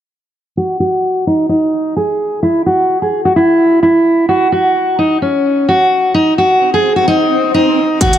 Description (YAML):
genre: hip hop, trap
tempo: 129 BPM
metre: 4/4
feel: half-time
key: unclear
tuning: A4 = 443 Hz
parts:
  - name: fingerpicked steel-string acoustic guitar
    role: melody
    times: 0.6-8.2 s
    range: C#4 to G#4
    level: -10 LUFS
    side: equal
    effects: low-pass filter, ping-pong delay
  - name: swell and impact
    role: sound effects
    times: 6.6-8.2 s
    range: none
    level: -18 LUFS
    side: left 2 dB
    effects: none
  - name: short 808-style bass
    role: bass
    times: 8.0-8.2 s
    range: G#1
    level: -13 LUFS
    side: left 1 dB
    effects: none
  - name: electronic hi-hat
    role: drums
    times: 8.0-8.2 s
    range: none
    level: -17 LUFS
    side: right 2 dB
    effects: vintage 12-bit sampler grit
room: light reverb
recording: none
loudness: -10 LUFS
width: side -10 dB against mid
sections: 0.6-8.0 A section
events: filter sweep on steel-string acoustic guitar 0.6-8.0; swell 6.6-8.0; impact 8.0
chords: none